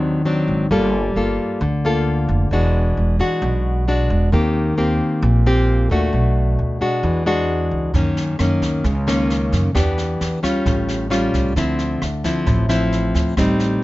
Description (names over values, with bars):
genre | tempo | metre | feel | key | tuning
bossa nova | 133 BPM | 4/4 | straight | unclear | A4 = 439 Hz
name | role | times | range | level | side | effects
nylon-string guitar | accompaniment | 0.0-13.8 s | Gb2 to A4 | -18 LUFS | left 1 dB | none
upright bass | bass | 0.0-13.8 s | E1 to Gb2 | -20 LUFS | right 1 dB | none
jazz brush drum kit | drums | 7.9-13.7 s | kick drum, rim click, snare drum | -25 LUFS | right 1 dB | none
room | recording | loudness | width
light reverb | nothing above 7.6 kHz | -16 LUFS | side -18 dB against mid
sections
0.0-13.8 A section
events
none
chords
0.0 Ab7#11; 0.7 Gm9; 2.5 E9; 4.3 Eb6; 6.1 Bm7; 7.0 E9; 7.9 Gb6; 9.8 Em7; 10.7 A7alt; 11.6 Dm9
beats
0.26 | 0.71 1.16 1.61 2.06 | 2.52 2.97 3.42 3.88 | 4.33 4.78 5.23 5.68 | 6.14 6.59 7.04 7.49 | 7.95 8.40 8.85 9.30 | 9.75 10.21 10.66 11.11 | 11.56 12.02 12.47 12.92 | 13.37 13.82